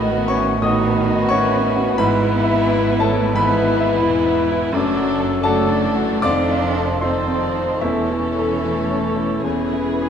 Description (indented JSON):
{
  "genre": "classical, romantic movement for piano and orchestra",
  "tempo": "71-91 BPM",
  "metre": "4/4",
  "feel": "rubato",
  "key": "unclear",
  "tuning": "A4 = 439 Hz",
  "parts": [
    { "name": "clear grand piano", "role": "melody", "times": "0.0-10.1 s", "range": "E2 to D#6", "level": "-19 LUFS", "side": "equal", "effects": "none" },
    { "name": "warm chamber violin section", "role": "melody", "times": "0.0-10.1 s", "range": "E4 to A4", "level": "-27 LUFS", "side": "left 3 dB", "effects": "none" },
    { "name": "dark clarinet", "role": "second line", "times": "0.0-10.1 s", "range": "E4 to A4", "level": "-29 LUFS", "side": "left 5 dB", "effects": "none" },
    { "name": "mellow cor anglais", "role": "second line", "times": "0.0-10.1 s", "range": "B4 to D5", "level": "-29 LUFS", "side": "right 3 dB", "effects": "none" },
    { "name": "mellow hollow concert flute", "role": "second line", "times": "0.0-10.1 s", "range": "A4 to F#5", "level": "-30 LUFS", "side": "left 1 dB", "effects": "none" },
    { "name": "rich chamber violin section", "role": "second line", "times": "0.0-10.1 s", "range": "B3 to D4", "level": "-29 LUFS", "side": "left 3 dB", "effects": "none" },
    { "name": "mellow bassoon", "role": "accompaniment", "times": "0.0-10.1 s", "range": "D#3 to F#3", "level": "-28 LUFS", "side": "right 1 dB", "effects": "none" },
    { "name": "rich symphonic viola section", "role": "accompaniment", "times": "0.0-10.1 s", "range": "D#3 to F#3", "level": "-30 LUFS", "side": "right 2 dB", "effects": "none" },
    { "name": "rich symphonic double bass section", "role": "bass", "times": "0.0-10.1 s", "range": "E1 to A1", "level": "-27 LUFS", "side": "right 5 dB", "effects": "none" },
    { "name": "warm chamber cello section", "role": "bass", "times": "0.0-10.1 s", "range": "E3 to D#4", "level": "-26 LUFS", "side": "right 2 dB", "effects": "none" },
    { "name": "mellow French horn section", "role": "sustained chords", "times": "0.6-10.1 s", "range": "D#3 to Eb4", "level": "-28 LUFS", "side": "left 4 dB", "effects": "none" }
  ],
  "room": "moderate scoring stage reverb, RT60 1.7 s",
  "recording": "minimal, uncompressed stereo recording",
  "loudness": "-16 LUFS",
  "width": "side -8 dB against mid",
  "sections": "0.0-10.1 A section",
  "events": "none",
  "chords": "0.0 B7/A; 2.0 E/G#; 4.7 D/F#; 6.2 F7; 7.8 A/E; 9.4 E",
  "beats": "0.62 1.30 | 1.98 2.65 3.35 4.04 | 4.74 5.43 6.23 7.01 | 7.81 8.63 9.44"
}